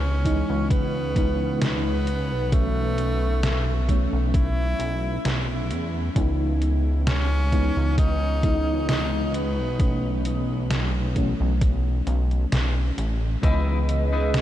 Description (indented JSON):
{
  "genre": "vaporwave",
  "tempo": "66 BPM",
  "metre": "4/4",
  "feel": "swing 53% on 16ths",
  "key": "unclear",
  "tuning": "A4 = 444 Hz",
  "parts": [
    { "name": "edgy tenor saxophone", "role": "melody", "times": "0.0-10.2 s", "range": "A3 to E4", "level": "-31 LUFS", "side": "right 1 dB", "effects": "tape echo" },
    { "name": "mellow FM electric piano", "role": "accompaniment", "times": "0.0-14.4 s", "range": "E3 to D#5", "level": "-29 LUFS", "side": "left 1 dB", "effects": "tremolo, wide subtle chorus, analog delay" },
    { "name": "chorused synth bass", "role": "bass", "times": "0.0-14.4 s", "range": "A1 to E2", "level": "-24 LUFS", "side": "equal", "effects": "none" },
    { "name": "electronic kick drum", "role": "drums", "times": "0.3-13.6 s", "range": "none", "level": "-22 LUFS", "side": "equal", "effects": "overdrive, vintage 12-bit sampler grit" },
    { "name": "gated 80s digital drum machine", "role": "drums", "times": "0.3-14.4 s", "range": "hi-hat, snare drum", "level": "-30 LUFS", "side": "equal", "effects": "gated reverb, gated reverb snare, overdrive, vintage 12-bit sampler grit" },
    { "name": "warbly tape-like pad", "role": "sustained chords", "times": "13.7-14.4 s", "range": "C#4 to D#5", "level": "-28 LUFS", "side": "right 3 dB", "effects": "chorus, built-in reverb" },
    { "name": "clean electric guitar", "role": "riff", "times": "13.4-14.3 s", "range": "D#4 to B4", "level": "-32 LUFS", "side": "left 4 dB", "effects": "analog chorus, analog delay" }
  ],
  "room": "moderate huge ambient reverb, RT60 6.6 s",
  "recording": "dreamy mix soaked in reverb",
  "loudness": "-21 LUFS",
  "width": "side -12 dB against mid",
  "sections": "0.0-14.4 A section",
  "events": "none",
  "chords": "0.0 C#m9; 2.1 B7sus4; 6.2 C#m9; 9.3 B7sus4; 13.4 C#m9",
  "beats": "0.71 1.61 | 2.52 3.43 4.34 5.25 | 6.16 7.07 7.98 8.89 | 9.80 10.71 11.62 12.52 | 13.43 14.34"
}